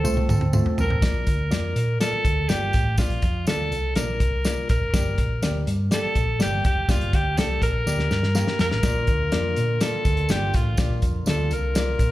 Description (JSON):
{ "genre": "uptempo 1960s-style soul", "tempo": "123 BPM", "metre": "4/4", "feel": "straight", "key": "Bb major", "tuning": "A4 = 441 Hz", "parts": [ { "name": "edgy alto saxophone", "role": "melody", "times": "0.0-12.1 s", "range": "F4 to Bb4", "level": "-26 LUFS", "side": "equal", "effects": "none" }, { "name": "reed electric piano", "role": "accompaniment", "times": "0.0-12.0 s", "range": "A3 to F5", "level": "-32 LUFS", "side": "left 2 dB", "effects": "slapback echo" }, { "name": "percussive tonewheel organ", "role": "sustained chords", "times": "0.0-1.0, 8.8-12.1 s", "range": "D3 to A4", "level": "-36 LUFS", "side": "right 1 dB", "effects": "overdrive, lush chorus" }, { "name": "hollow-body short-scale fingered electric bass", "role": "bass", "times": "0.0-12.1 s", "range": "F1 to Bb2", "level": "-24 LUFS", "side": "equal", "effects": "none" }, { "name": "warm soul drum kit", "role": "drums", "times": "0.0-12.1 s", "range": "hi-hat, kick drum, snare drum, toms", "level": "-24 LUFS", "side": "equal", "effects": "none" }, { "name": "tambourine", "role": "percussion", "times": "0.0-12.1 s", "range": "none", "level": "-39 LUFS", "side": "right 2 dB", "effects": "none" } ], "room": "small room ambience", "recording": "live gig heard through the venue's PA, club reverb", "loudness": "-20 LUFS", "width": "side -16 dB against mid", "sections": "0.0-1.0 A section; 1.0-12.1 B section", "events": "drum fill 0.0-1.0, 7.9-8.8", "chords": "0.0 F; 1.0 Bb", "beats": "0.04 0.53 | 1.02 1.51 2.00 2.49 | 2.98 3.47 3.96 4.45 | 4.94 5.43 5.92 6.40 | 6.89 7.38 7.87 8.35 | 8.84 9.32 9.81 10.29 | 10.78 11.27 11.75" }